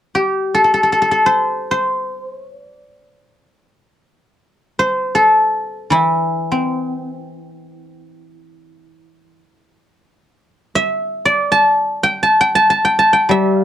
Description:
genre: chinese traditional, Chinese solo plucked strings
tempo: free time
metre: none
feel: none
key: A yu mode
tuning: A4 = 435 Hz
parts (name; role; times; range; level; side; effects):
- guzheng; solo; 0.1-13.6 s; E3 to A5; -13 LUFS; equal; none
room: light reverb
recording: worn, warbling old tape, cassette tape, warbly pitch drift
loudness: -13 LUFS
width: side -10 dB against mid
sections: 0.0-13.6 A section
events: none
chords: none

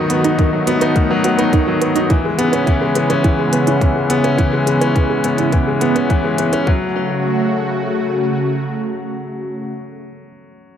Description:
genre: piano and strings electronica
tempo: 105 BPM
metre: 4/4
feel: straight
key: F# dorian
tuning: A4 = 440 Hz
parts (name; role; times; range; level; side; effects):
- lush unison pad; sustained chords; 0.0-9.7 s; C#3 to F#4; -20 LUFS; equal; chorus, phaser, sidechain pumping
- soft round pluck; arpeggios; 0.0-6.9 s; D#4 to B4; -24 LUFS; right 5 dB; chorus, sidechain pumping, digital delay
- bright grand piano; riff; 0.0-10.8 s; D#3 to D#4; -17 LUFS; left 2 dB; digital delay
- electronic hi-hat; drums; 0.1-6.6 s; none; -28 LUFS; right 2 dB; none
- electronic kick drum; drums; 0.4-6.8 s; none; -17 LUFS; equal; none
room: moderate concert hall reverb, RT60 2.4 s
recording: dark, warm production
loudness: -14 LUFS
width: side -9 dB against mid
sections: 0.0-6.7 A section; 6.7-9.0 B section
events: filter sweep on synth arpeggio sound 0.0-6.7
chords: 0.0 B; 2.1 C#m7; 6.7 F#m

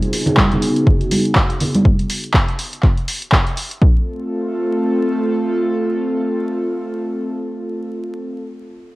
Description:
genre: deep house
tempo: 122 BPM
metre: 4/4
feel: swing 57% on 16ths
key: unclear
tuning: A4 = 440 Hz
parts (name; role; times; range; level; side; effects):
- airy breathy pad; sustained chords; 0.0-8.2 s; Db3 to A4; -20 LUFS; equal; chorus, sidechain pumping
- punchy analog drum machine; drums; 0.0-3.8 s; handclaps, hi-hat; -20 LUFS; equal; none
- congas; percussion; 0.3-1.8 s; none; -19 LUFS; right 1 dB; none
- electronic kick drum; drums; 0.4-3.9 s; none; -14 LUFS; equal; none
room: light reverb, digital ambience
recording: home recording on cassette, vinyl crackle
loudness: -15 LUFS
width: side -20 dB against mid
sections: 0.0-3.8 A section; 3.8-7.8 B section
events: filter sweep on analog synth pad 0.0-1.9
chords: 0.0 Db9sus4; 1.9 N.C.; 3.8 F

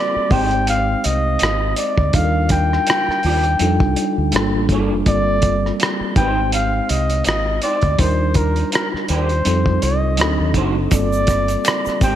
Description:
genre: R&B, neo-soul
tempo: 82 BPM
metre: 4/4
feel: swing 56% on 16ths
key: G minor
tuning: A4 = 440 Hz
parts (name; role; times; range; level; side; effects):
- warm flugelhorn; melody; 0.0-12.2 s; Bb4 to G5; -21 LUFS; equal; none
- mellow tine electric piano; accompaniment; 0.0-12.2 s; F#3 to C5; -22 LUFS; equal; fast stereo tremolo
- deep dub fingered electric bass; bass; 0.2-12.2 s; F1 to F2; -20 LUFS; equal; none
- electric guitar through a small old amp; second line; 0.3-12.2 s; Ab3 to D5; -29 LUFS; right 4 dB; ensemble chorus
- cloth-damped thuddy drum kit; drums; 0.3-12.2 s; hi-hat, kick drum, rim click; -20 LUFS; equal; gated reverb
- tube shaker and finger snaps; percussion; 10.9-12.2 s; none; -32 LUFS; equal; none
room: moderate plate reverb, RT60 2.7 s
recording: bright 1980s-style digital production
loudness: -15 LUFS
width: side -11 dB against mid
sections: 0.0-5.1 A section; 5.1-12.2 A section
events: none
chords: 0.3 Abmaj7; 2.1 Ebmaj9; 3.6 F13; 4.3 Gm9; 5.1 Gm11; 6.2 Abmaj7; 8.0 Ebmaj9; 9.5 F9; 10.2 D7b9; 10.9 Gm11

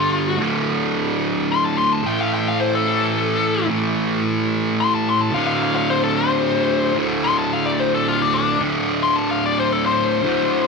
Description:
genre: rock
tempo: 146 BPM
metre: 4/4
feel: swing 66% on 8ths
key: unclear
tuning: A4 = 440 Hz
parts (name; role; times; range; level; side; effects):
- nasal lead guitar with a parked wah; melody; 0.0-10.7 s; D4 to C6; -21 LUFS; left 6 dB; overdrive, slapback echo
- fuzz guitar; riff; 0.0-10.7 s; D2 to A3; -19 LUFS; right 2 dB; distortion
room: moderate plate reverb, RT60 2.8 s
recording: none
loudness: -17 LUFS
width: side -4 dB against mid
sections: 0.0-8.6 A section; 8.6-10.7 A section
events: lead electric guitar solo 0.0-10.7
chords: 0.4 D5; 2.0 A5; 5.3 D5

